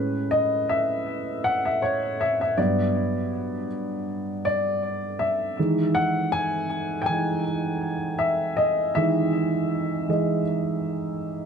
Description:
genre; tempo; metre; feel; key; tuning
R&B; 80 BPM; 4/4; swing 56% on 16ths; E major; A4 = 440 Hz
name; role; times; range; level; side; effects
dark upright piano; solo; 0.0-11.5 s; G2 to G#5; -22 LUFS; equal; tape echo
room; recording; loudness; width
moderate studio ambience, RT60 0.5 s; none; -22 LUFS; side -6 dB against mid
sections
0.0-5.6 A section; 5.6-11.5 B section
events
upright piano solo 0.0-5.6, 5.6-11.5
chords
0.0 Amaj9; 2.6 Gmaj7; 5.6 Emaj7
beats
0.33 1.07 1.82 | 2.58 3.33 4.08 4.83 | 5.58 6.33 7.08 7.83 | 8.57 9.32 10.07 10.82

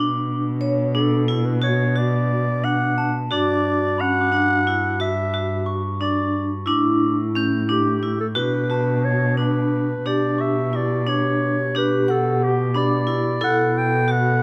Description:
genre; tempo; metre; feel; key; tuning
contemporary instrumental, chamber music in an uneven meter; 178 BPM (eighths); 5/8; straight; B minor; A4 = 440 Hz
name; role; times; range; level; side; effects
vibraphone with hard mallets; second line; 0.0-14.4 s; D4 to A4; -29 LUFS; equal; none
vibraphone with hard mallets; arpeggios; 0.0-14.3 s; C#4 to F#5; -27 LUFS; equal; none
muted cello; bass; 0.0-14.4 s; G2 to B2; -26 LUFS; equal; none
growling clarinet; melody; 0.9-14.4 s; G4 to G5; -26 LUFS; equal; none
glockenspiel with hard plastic mallets; texture; 3.0-13.7 s; A5 to G6; -36 LUFS; equal; none
room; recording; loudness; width
light reverb; close, detailed microphones; -21 LUFS; mono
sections
0.0-10.1 A section; 10.1-14.4 B section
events
none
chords
0.0 Bm; 3.3 Gmaj7; 6.7 A7sus4; 8.4 Bm7; 10.1 Em7/B; 11.8 Gmaj7/B; 13.4 A5/B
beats
0.28 0.61 0.94 1.28 | 1.62 1.95 2.29 2.63 2.98 | 3.32 3.66 4.00 4.33 4.67 | 5.01 5.34 5.67 6.01 6.34 | 6.68 7.01 7.35 7.69 8.02 | 8.36 8.70 9.04 9.38 9.72 | 10.06 10.40 10.74 11.07 11.41 | 11.75 12.09 12.42 12.75 13.08 | 13.42 13.75 14.09 14.42

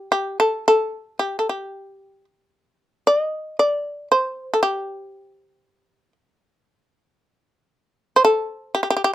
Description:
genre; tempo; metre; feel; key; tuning
japanese traditional, Japanese chamber music; 57 BPM; 2/4; rubato; unclear; A4 = 440 Hz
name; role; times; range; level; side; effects
shamisen; solo; 0.0-9.1 s; G4 to Eb5; -18 LUFS; equal; none
room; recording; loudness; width
little or no reverb; close, detailed microphones; -19 LUFS; side -13 dB against mid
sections
0.0-9.1 A section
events
none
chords
none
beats
| 0.41 1.47 | 2.54 3.60 | 4.62 5.64 | 6.67 7.71 | 8.76

